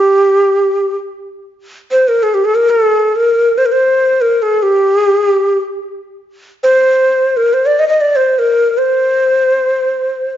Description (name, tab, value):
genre	Arabic maqam ensemble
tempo	free time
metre	none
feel	none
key	unclear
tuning	A4 = 440 Hz
part	breathy ney	solo	0.0-10.3 s	G4 to Eb5	-10 LUFS	equal	none
room	moderate recital hall reverb, RT60 1.5 s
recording	nothing above 7.5 kHz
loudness	-10 LUFS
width	side -11 dB against mid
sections	0.0-6.2 A section; 6.2-10.4 A section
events	none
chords	none